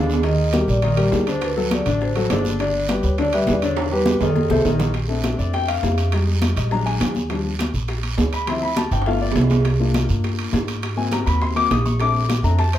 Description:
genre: Afro-Cuban jazz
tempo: 204 BPM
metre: 4/4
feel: straight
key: Bb major from 5.0 s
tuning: A4 = 437 Hz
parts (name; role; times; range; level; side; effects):
- vibraphone with medium mallets; melody; 0.0-4.6 s; A4 to E5; -24 LUFS; right 1 dB; plate reverb
- warm concert grand piano; accompaniment; 0.0-12.8 s; D3 to Eb6; -22 LUFS; left 3 dB; none
- upright bass; bass; 0.0-12.8 s; G1 to Ab2; -22 LUFS; right 1 dB; none
- timbales; percussion; 0.0-12.8 s; none; -27 LUFS; right 6 dB; none
- bongos; percussion; 0.1-12.7 s; none; -32 LUFS; left 2 dB; none
- guiro; percussion; 0.1-12.8 s; none; -35 LUFS; right 5 dB; none
- congas; percussion; 0.2-12.8 s; none; -26 LUFS; left 1 dB; none
room: wet studio reverb, RT60 0.5 s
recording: heard from further back in the room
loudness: -18 LUFS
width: side -12 dB against mid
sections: 0.0-5.0 A section; 5.0-12.8 B section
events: drum fill 0.0, 3.8-5.0, 8.9-9.7; grand piano solo 5.0-12.8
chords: 0.2 Ebmaj7; 1.4 D6; 2.6 G6; 3.8 Em7; 4.4 F7; 5.0 Bbmaj9; 6.1 Fm9; 6.7 Bbaug7; 7.3 Ebmaj9; 8.5 Dm7; 9.1 G7; 9.7 Cm11; 10.8 Ab9; 12.0 Bbmaj9

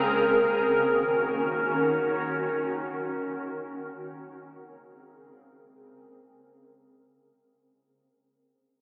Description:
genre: hip hop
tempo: free time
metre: none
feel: none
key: unclear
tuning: A4 = 440 Hz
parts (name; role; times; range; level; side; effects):
- granular cloud pad; sustained chords; 0.0-7.6 s; Db3 to Bb4; -27 LUFS; equal; built-in reverb, low-pass filter
room: wet huge ambient reverb, RT60 7.5 s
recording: AM radio sound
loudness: -26 LUFS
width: mono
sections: 0.0-7.7 A section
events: fade-out 0.0-7.7; filter sweep on ambient pad 0.0-7.7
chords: 0.1 Ebm7; 3.9 Bbm9

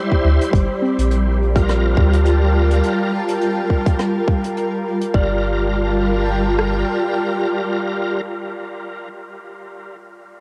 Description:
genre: ambient dub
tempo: 104 BPM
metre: 4/4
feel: swing 56% on 16ths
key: G minor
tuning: A4 = 440 Hz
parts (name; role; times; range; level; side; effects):
- granular cloud pad; sustained chords; 0.0-8.2 s; G3 to A5; -24 LUFS; equal; built-in reverb, cassette tape
- soft synth bell; arpeggios; 0.0-10.0 s; C4 to D5; -31 LUFS; equal; none
- bright tonewheel organ; stabs; 0.0-8.2 s; G3 to C5; -26 LUFS; equal; overdrive, chorus vibrato, fast rotary speaker, vintage 12-bit sampler grit, cassette tape, dub echo
- organic electronic drum kit; drums; 0.1-6.7 s; kick drum, rim click; -20 LUFS; equal; overdrive, cassette tape
- soft dub sub bass; bass; 0.2-6.8 s; G1 to D2; -20 LUFS; equal; none
- jazz brush drum kit; drums; 0.4-5.1 s; hi-hat, rim click; -35 LUFS; equal; cassette tape, dub echo
room: light reverb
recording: home recording on cassette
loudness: -18 LUFS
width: mono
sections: 0.5-5.1 A section; 5.1-7.5 B section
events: filter sweep on synth bell 0.5-5.1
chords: 0.0 C/G; 0.5 Gm7

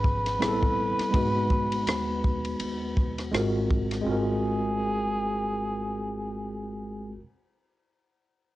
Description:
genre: hip hop, jazz-hop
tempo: 82 BPM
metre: 4/4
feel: swing 58% on 16ths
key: G# dorian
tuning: A4 = 440 Hz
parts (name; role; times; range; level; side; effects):
- trombone with metal mute; melody; 0.0-7.2 s; G#4 to B4; -30 LUFS; equal; cassette tape, plate reverb
- barky tine electric piano; accompaniment; 0.0-7.2 s; E#3 to B4; -29 LUFS; equal; overdrive, fast stereo tremolo, cassette tape
- upright bass; bass; 0.0-7.2 s; G#1 to D#2; -34 LUFS; equal; none
- compact cocktail drum kit; drums; 0.0-4.1 s; hi-hat, kick drum, ride cymbal, rim click; -28 LUFS; equal; vintage 12-bit sampler grit
room: moderate studio reverb, RT60 0.6 s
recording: home recording on cassette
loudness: -25 LUFS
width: side -16 dB against mid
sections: 0.0-4.1 A section; 4.1-7.0 B section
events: none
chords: 0.4 Am9; 1.1 G#m7; 3.3 G#13

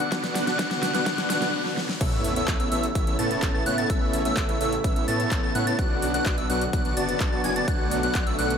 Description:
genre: EDM, festival progressive house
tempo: 127 BPM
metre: 4/4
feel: straight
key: A major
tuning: A4 = 441 Hz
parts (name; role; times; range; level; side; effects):
- lush unison pad; sustained chords; 0.0-8.6 s; C#3 to D5; -31 LUFS; equal; chorus, sidechain pumping
- plucky unison lead; arpeggios; 0.0-8.5 s; E6 to A6; -29 LUFS; equal; vintage 12-bit sampler grit, sidechain pumping, analog delay
- dense compressed supersaw; riff; 0.0-8.5 s; B3 to A5; -27 LUFS; equal; sidechain pumping, analog delay
- big-room dance drum kit; drums; 0.0-8.6 s; crash cymbal, handclaps, hi-hat, snare drum; -31 LUFS; equal; overdrive, small room ambience
- riser and sub drop; sound effects; 0.0-3.9 s; none; -35 LUFS; left 1 dB; none
- electronic kick drum; drums; 0.1-8.2 s; none; -26 LUFS; equal; overdrive, high-pass filter on kick, small room ambience
- wide detuned saw bass; bass; 2.0-8.6 s; F#1 to A2; -32 LUFS; equal; chorus, sidechain pumping
room: wet plate reverb, RT60 2.2 s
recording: dreamy mix soaked in reverb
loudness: -22 LUFS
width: side -7 dB against mid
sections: 0.0-2.0 A section; 2.0-8.6 B section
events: build-up 0.0-2.0; drum fill 0.0-1.5, 1.7-2.0; riser 0.0-2.0; stop 1.5-2.0; drop 2.0-8.6; impact 2.0-3.9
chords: 0.0 Bm; 2.0 Aadd9; 5.8 Bm

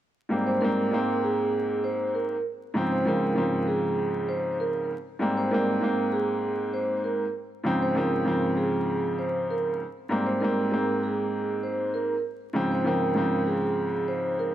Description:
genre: hip hop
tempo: 98 BPM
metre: 4/4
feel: swing 55% on 16ths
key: Ab major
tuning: A4 = 440 Hz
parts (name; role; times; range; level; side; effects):
- warm upright piano; accompaniment; 0.3-14.5 s; Ab2 to C4; -26 LUFS; equal; cassette tape, high-pass filter, low-pass filter
- vibraphone with soft mallets; melody; 0.5-14.5 s; Ab4 to C5; -28 LUFS; right 2 dB; high-pass filter, low-pass filter, ping-pong delay
room: light reverb, small room reverb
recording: vinyl crackle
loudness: -24 LUFS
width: side -12 dB against mid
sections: 0.3-14.5 A section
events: none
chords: 0.3 Abmaj9; 2.8 Dbmaj7/Ab; 5.2 Abmaj9; 7.7 Dbmaj7/Ab; 10.1 Abmaj9; 12.6 Dbmaj7/Ab

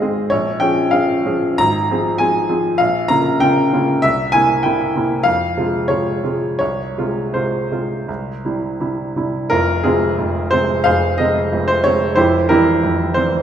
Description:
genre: classical, romantic character piece for solo piano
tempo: 80-103 BPM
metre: 4/4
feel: rubato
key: F minor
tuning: A4 = 440 Hz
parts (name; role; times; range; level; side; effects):
- clear baby grand piano; solo; 0.0-13.4 s; F1 to Bb5; -15 LUFS; equal; none
room: wet recital hall reverb, RT60 1.5 s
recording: heard from further back in the room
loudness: -15 LUFS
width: side -9 dB against mid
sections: 0.0-9.5 A section; 9.5-13.4 B section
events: none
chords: 0.3 Bbm7; 1.6 Fm/Ab; 2.8 Gm7b5/Bb; 4.0 C7; 5.3 Fm; 6.6 Fm/C; 8.1 C; 9.5 Fm; 12.2 C7/F

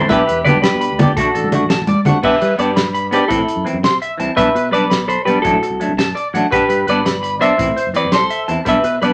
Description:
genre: highlife guitar band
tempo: 112 BPM (dotted quarters)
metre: 12/8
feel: straight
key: G major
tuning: A4 = 439 Hz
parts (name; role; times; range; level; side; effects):
- semi-hollow electric guitar; melody; 0.0-9.1 s; E4 to E5; -19 LUFS; equal; none
- clear alto saxophone; second line; 0.0-1.8 s; D4 to G4; -31 LUFS; equal; none
- semi-hollow electric guitar; accompaniment; 0.0-9.1 s; E3 to G4; -21 LUFS; equal; none
- fingered electric bass; bass; 0.0-9.1 s; E1 to G3; -27 LUFS; equal; none
- electric guitar at the edge of break-up; arpeggios; 0.1-9.1 s; A4 to C6; -23 LUFS; equal; none
- warm soul drum kit; drums; 0.1-9.1 s; crash cymbal, hi-hat, kick drum, snare drum; -24 LUFS; equal; none
- congas; percussion; 0.1-2.2 s; none; -19 LUFS; equal; none
room: moderate studio ambience, RT60 0.5 s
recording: faint mains hum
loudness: -16 LUFS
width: mono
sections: 0.0-2.2 A section; 2.2-9.1 B section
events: none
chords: 0.1 G; 1.2 D/A; 2.2 G; 3.3 Am; 4.4 G/B; 5.4 D; 6.5 G; 7.6 Am

